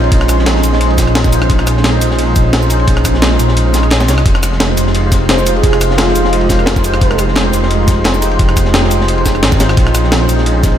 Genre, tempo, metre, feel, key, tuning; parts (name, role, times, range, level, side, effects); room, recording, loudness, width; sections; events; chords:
liquid drum and bass; 174 BPM; 4/4; swing 54% on 16ths; F minor; A4 = 441 Hz
bright tine electric piano; accompaniment; 0.0-10.8 s; Ab3 to Db5; -18 LUFS; equal; analog chorus, diffuse ambient delay
glassy FM pad; sustained chords; 0.0-10.8 s; Ab3 to C6; -18 LUFS; right 1 dB; ensemble chorus, built-in reverb
dark detuned saw bass; bass; 0.0-10.8 s; F1 to C2; -14 LUFS; equal
crunchy breakbeat drum kit; drums; 0.0-10.7 s; ride cymbal, snare drum; -21 LUFS; equal; high-pass filter on cymbals, small room reverb, high-pass filter on snare, high-pass filter on room
breakbeat sampler-style drum kit; drums; 0.1-10.7 s; hi-hat, rim click, shaker, snare drum; -17 LUFS; equal; small room reverb
electronic kick drum; drums; 0.1-10.7 s; -13 LUFS; equal; small room reverb
breathy flute-like synth lead; melody; 5.3-7.2 s; F4 to C5; -19 LUFS; right 2 dB; analog chorus, ping-pong delay
light reverb, digital ambience; -9 LUFS; side -10 dB against mid
0.0-10.8 A section
kick drops out 3.6-4.3
0.0 Bbm11; 4.3 Fm7; 9.8 Bbm11